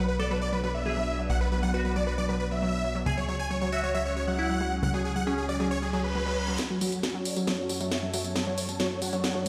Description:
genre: uplifting trance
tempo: 136 BPM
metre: 4/4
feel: straight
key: F# minor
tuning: A4 = 440 Hz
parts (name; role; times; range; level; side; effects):
- supersaw chords; melody; 0.0-9.5 s; F#4 to A5; -34 LUFS; equal; low-pass filter, digital delay
- glassy wavetable pluck; second line; 0.0-6.5 s; C#4 to B4; -38 LUFS; equal; chorus, digital delay
- lush unison pad; sustained chords; 0.0-9.5 s; F#2 to C#5; -38 LUFS; equal; chorus
- unison pluck; arpeggios; 0.0-9.5 s; F#3; -35 LUFS; equal; digital delay
- plucky analog bass; bass; 0.0-6.6 s; B1 to C#2; -34 LUFS; equal; none
- reverse cymbal and riser; sound effects; 5.9-9.5 s; none; -43 LUFS; equal; none
- techno drum kit; drums; 6.6-9.5 s; hi-hat, snare drum, tambourine; -34 LUFS; equal; none
room: moderate lush hall reverb, RT60 1.9 s, digital ambience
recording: played on a big sound system in a bare room, stone room reverb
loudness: -29 LUFS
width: mono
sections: 0.0-6.6 A section; 6.6-9.5 B section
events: filter sweep on synth arpeggio sound 0.0-6.6; reverse cymbal 5.9-6.6; build-up 6.6-9.5; drum fill 6.6-9.5; filter sweep on supersaw synth 6.6-9.5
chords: 0.0 Bm; 3.1 C#sus4; 6.6 F#m

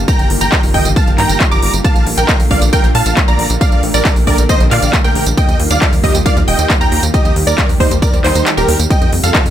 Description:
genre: uplifting trance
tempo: 136 BPM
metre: 4/4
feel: straight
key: unclear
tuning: A4 = 440 Hz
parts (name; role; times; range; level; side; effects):
- tight sequencer bass; bass; 0.0-9.5 s; Eb1 to Bb2; -16 LUFS; equal; sidechain pumping
- dense compressed supersaw; melody; 0.1-9.4 s; Eb4 to D6; -18 LUFS; right 1 dB; sidechain pumping, digital delay
- wide unison pluck; second line; 0.1-9.4 s; Bb4 to D6; -21 LUFS; right 1 dB; sidechain pumping, digital delay
- lush unison pad; sustained chords; 0.1-9.5 s; C3 to G4; -20 LUFS; right 1 dB; chorus, sidechain pumping
- electronic kick drum; drums; 0.1-9.4 s; none; -13 LUFS; equal; overdrive
- techno drum kit; drums; 0.1-9.5 s; handclaps, hi-hat, tambourine; -18 LUFS; right 1 dB; overdrive, sidechain pumping on hats, sidechain pumping on perc
room: little or no reverb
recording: none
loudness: -10 LUFS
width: side -11 dB against mid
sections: 0.0-9.5 A section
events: kick drops out 8.5-8.9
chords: 0.1 Ebadd9/G; 1.8 Bbmaj7; 5.4 Ebadd9; 8.9 Fadd9

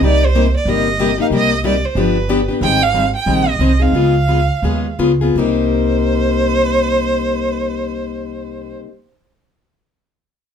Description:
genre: acoustic string swing (jazz manouche)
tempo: 158-186 BPM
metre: 4/4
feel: swing 60% on 8ths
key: C minor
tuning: A4 = 440 Hz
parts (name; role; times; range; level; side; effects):
- picked plugged-in steel-string acoustic guitar; accompaniment; 0.0-8.9 s; C3 to Ab4; -17 LUFS; left 5 dB; none
- upright bass; bass; 0.0-8.7 s; G1 to Eb2; -19 LUFS; right 2 dB; none
- warm violin; melody; 0.1-8.7 s; B4 to G5; -19 LUFS; right 4 dB; none
room: moderate studio reverb, RT60 0.5 s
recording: none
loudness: -13 LUFS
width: side -7 dB against mid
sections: 0.0-2.6 A section; 2.6-5.4 B section; 5.4-8.4 C section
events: slowing down 2.6-5.4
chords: 0.0 Cm7; 2.0 G7; 2.6 Abmaj9; 3.9 Db7; 5.4 Cm7

